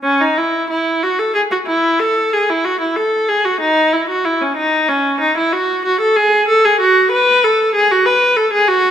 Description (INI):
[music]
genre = classical, baroque-style suite movement for unaccompanied viola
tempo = 94 BPM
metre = 4/4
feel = rubato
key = unclear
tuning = A4 = 440 Hz
[part]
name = rich viola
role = solo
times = 0.0-8.9 s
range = C#4 to B4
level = -12 LUFS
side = equal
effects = none
[sound]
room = wet stone room reverb, RT60 1.3 s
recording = minimal, uncompressed stereo recording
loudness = -12 LUFS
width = side -9 dB against mid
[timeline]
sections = 0.0-8.9 A section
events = none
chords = none